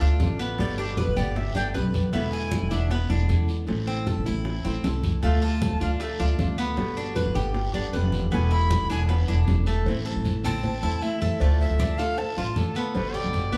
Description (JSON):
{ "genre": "latin, Cuban son and guajira", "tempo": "155 BPM", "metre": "4/4", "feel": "straight", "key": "A minor", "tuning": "A4 = 440 Hz", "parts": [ { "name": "flamenco guitar", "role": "accompaniment", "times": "0.0-13.6 s", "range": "B2 to G4", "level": "-34 LUFS", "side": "equal", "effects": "none" }, { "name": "Cuban tres", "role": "arpeggios", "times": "0.0-13.6 s", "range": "A3 to B4", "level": "-34 LUFS", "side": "equal", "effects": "none" }, { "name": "upright bass", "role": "bass", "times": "0.0-13.6 s", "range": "E1 to E2", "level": "-28 LUFS", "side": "equal", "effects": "none" }, { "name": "bongos and cowbell", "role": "percussion", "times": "0.0-13.5 s", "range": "none", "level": "-40 LUFS", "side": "equal", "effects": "none" }, { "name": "congas", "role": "percussion", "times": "0.0-13.6 s", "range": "none", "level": "-32 LUFS", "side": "equal", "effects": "none" }, { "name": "guiro", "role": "percussion", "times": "0.2-13.6 s", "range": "none", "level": "-45 LUFS", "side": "equal", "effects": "none" }, { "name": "mellow tenor recorder", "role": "melody", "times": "0.6-2.9, 5.2-5.9, 8.3-12.8 s", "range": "G4 to B5", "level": "-34 LUFS", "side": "equal", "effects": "none" }, { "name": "warm trumpet", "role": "second line", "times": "12.6-13.6 s", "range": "A4 to D5", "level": "-35 LUFS", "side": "equal", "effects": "none" } ], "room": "light reverb", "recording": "heard from further back in the room, small room ambience", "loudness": "-25 LUFS", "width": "mono", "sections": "0.0-9.9 A section; 9.9-13.6 B section", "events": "recorder solo 0.0-9.9", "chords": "0.0 Dm; 0.6 G; 2.1 E7; 3.7 Am; 5.2 Dm; 6.8 G; 8.3 E7; 9.9 Am; 11.4 Dm; 13.0 G" }